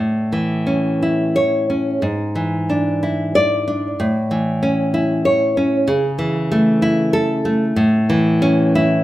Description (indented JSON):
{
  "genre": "romantic piece for solo classical guitar",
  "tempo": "63 BPM (dotted quarters)",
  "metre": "6/8",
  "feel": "uneven beats, rubato",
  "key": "A major",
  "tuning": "A4 = 440 Hz",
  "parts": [
    { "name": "nylon-string guitar", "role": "solo", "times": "0.0-9.0 s", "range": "G#2 to D5", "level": "-15 LUFS", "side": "equal", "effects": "none" }
  ],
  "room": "moderate recital hall reverb, RT60 1.5 s",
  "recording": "minimal, uncompressed stereo recording",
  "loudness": "-15 LUFS",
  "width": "side -15 dB against mid",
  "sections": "0.0-9.0 A section",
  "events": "none",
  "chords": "0.0 A; 2.0 E7/G#; 4.0 A; 5.9 A/C#; 7.8 A"
}